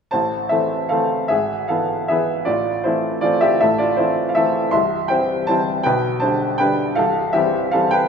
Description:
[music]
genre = classical, piano waltz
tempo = 158 BPM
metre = 3/4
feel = uneven beats, rubato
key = A minor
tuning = A4 = 440 Hz
[part]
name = bright upright piano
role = solo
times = 0.1-8.1 s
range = C1 to C6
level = -16 LUFS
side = equal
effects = none
[sound]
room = moderate recital hall reverb, RT60 1.7 s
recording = minimal, uncompressed stereo recording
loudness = -16 LUFS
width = side -6 dB against mid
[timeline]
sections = 0.1-8.1 A section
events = none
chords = 0.1 Am; 1.3 E/G#; 2.5 Am; 4.7 C; 5.9 G/B; 7.0 C

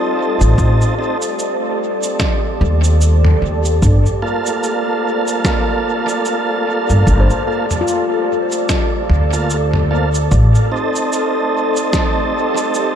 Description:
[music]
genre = ambient dub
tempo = 74 BPM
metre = 4/4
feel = swing 58% on 16ths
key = G minor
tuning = A4 = 440 Hz
[part]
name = granular cloud pad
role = sustained chords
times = 0.0-13.0 s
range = G4 to F5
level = -21 LUFS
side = left 2 dB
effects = built-in reverb
[part]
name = handpan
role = arpeggios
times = 0.0-11.3 s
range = F4 to C5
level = -25 LUFS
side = left 6 dB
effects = vintage 12-bit sampler grit, dub echo
[part]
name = tonewheel organ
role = stabs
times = 0.0-13.0 s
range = Bb3 to A4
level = -20 LUFS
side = right 2 dB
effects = chorus vibrato, dub echo
[part]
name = wind-like tuned noise texture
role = texture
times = 0.0-13.0 s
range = D5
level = -26 LUFS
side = right 8 dB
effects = built-in reverb
[part]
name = upright bass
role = bass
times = 0.4-10.5 s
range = G1 to Eb2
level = -13 LUFS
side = equal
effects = none
[part]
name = lo-fi sampler-style drum kit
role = drums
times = 0.4-12.9 s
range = shaker, snare drum, toms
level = -23 LUFS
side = right 1 dB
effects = dub echo
[part]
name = electronic kick drum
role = drums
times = 0.6-12.1 s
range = none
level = -18 LUFS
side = equal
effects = overdrive
[sound]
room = light reverb, digital ambience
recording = none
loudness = -13 LUFS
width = side -9 dB against mid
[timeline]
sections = 0.0-13.0 A section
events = none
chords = 0.0 Adim; 3.8 Gm7; 10.3 Adim

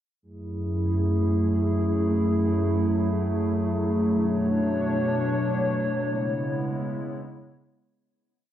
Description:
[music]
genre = hip hop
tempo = free time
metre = none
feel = none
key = F# minor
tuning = A4 = 440 Hz
[part]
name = warbly tape-like pad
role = solo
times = 0.2-7.9 s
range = F#2 to C#5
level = -23 LUFS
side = equal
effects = chorus, built-in reverb
[sound]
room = moderate huge ambient reverb, RT60 7.2 s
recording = none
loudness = -23 LUFS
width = side -11 dB against mid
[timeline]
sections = 0.2-8.0 verse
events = fade-out 6.0-8.0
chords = 0.2 F#m9; 4.1 Bm9; 6.0 C#m7

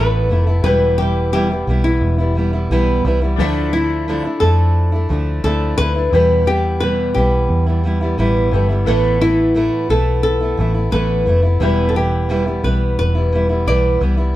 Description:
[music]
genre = acoustic pop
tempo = 88 BPM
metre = 4/4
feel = straight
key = unclear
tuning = A4 = 440 Hz
[part]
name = flamenco guitar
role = melody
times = 0.0-14.3 s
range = E4 to D5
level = -20 LUFS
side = left 2 dB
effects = none
[part]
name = clear upright piano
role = accompaniment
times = 0.0-14.4 s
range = F3 to E5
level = -28 LUFS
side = left 8 dB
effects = none
[part]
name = fingerpicked steel-string acoustic guitar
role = accompaniment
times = 0.0-14.4 s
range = E2 to E4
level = -19 LUFS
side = right 2 dB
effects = none
[part]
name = vintage muted fingered electric bass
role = bass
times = 0.0-14.3 s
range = E1 to F2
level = -17 LUFS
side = equal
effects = none
[sound]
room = light reverb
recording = band playing live in one room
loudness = -14 LUFS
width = side -15 dB against mid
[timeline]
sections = 0.0-14.4 A section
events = none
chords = 0.0 Asus2; 0.6 Em; 3.4 Dmadd9; 6.1 Em; 8.9 Asus2; 11.6 Em

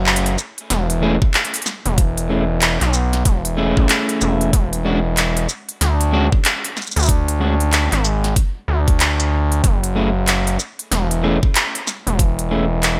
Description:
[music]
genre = glitch hop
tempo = 94 BPM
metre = 4/4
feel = swing 61% on 16ths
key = F# minor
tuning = A4 = 442 Hz
[part]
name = gritty driven synth bass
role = bass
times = 0.0-13.0 s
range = E1 to D2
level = -20 LUFS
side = equal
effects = none
[part]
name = pop drum kit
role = drums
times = 0.1-13.0 s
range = handclaps, hi-hat, shaker, snare drum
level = -22 LUFS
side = equal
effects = studio reverb, gated reverb
[part]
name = electric guitar at the edge of break-up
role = stabs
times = 1.0-12.6 s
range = G#3 to G#4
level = -25 LUFS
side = equal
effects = sidechain pumping, delay
[part]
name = electronic kick drum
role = drums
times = 1.2-12.3 s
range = none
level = -19 LUFS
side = equal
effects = studio reverb
[sound]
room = little or no reverb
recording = bright 1980s-style digital production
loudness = -18 LUFS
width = mono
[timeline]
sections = 0.0-13.0 A section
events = none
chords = 0.0 F#m7 (rootless); 4.5 E7; 9.6 F#7(no3)

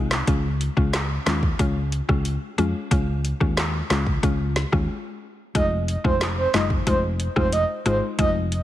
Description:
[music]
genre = dancehall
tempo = 91 BPM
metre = 4/4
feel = straight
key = unclear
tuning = A4 = 440 Hz
[part]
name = mallet-like synth pluck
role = accompaniment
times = 0.0-8.3 s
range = Ab3 to F4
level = -27 LUFS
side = left 3 dB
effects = chorus, sidechain pumping
[part]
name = hollow-body short-scale fingered electric bass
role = bass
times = 0.0-8.6 s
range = F1 to F2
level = -25 LUFS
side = equal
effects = none
[part]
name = afro-pop drum kit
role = drums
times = 0.1-8.6 s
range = handclaps, hi-hat, kick drum, rim click, snare drum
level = -24 LUFS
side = equal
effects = vintage 12-bit sampler grit
[part]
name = breathy flute-like synth lead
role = melody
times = 5.6-8.3 s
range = C5 to Eb5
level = -24 LUFS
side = right 2 dB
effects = chorus, digital delay
[sound]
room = light reverb, digital ambience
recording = heavily compressed radio sound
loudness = -20 LUFS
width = side -13 dB against mid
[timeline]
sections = 0.0-8.6 A section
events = break 4.9-5.6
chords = 0.3 Db; 5.6 Fm7

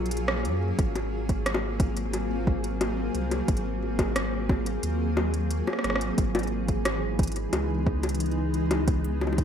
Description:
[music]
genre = IDM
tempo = 89 BPM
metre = 4/4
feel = straight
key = unclear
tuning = A4 = 440 Hz
[part]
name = granular cloud pad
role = sustained chords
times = 0.0-9.4 s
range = E3 to Ab4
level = -29 LUFS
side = equal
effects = built-in reverb
[part]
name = warm sub bass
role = bass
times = 0.0-9.4 s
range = Ab1 to Gb2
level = -30 LUFS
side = equal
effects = none
[part]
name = organic electronic drum kit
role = drums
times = 0.1-9.4 s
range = bongos, hi-hat, rim click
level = -30 LUFS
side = left 1 dB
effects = overdrive
[part]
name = electronic kick drum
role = drums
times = 0.8-9.4 s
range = none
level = -26 LUFS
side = equal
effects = overdrive
[sound]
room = moderate lush hall reverb, RT60 1.9 s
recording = rough home demo mix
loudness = -24 LUFS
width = side -8 dB against mid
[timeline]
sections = 0.0-9.4 A section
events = none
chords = 0.0 Gbmaj9; 0.8 Ab13; 6.2 Emaj7/G#

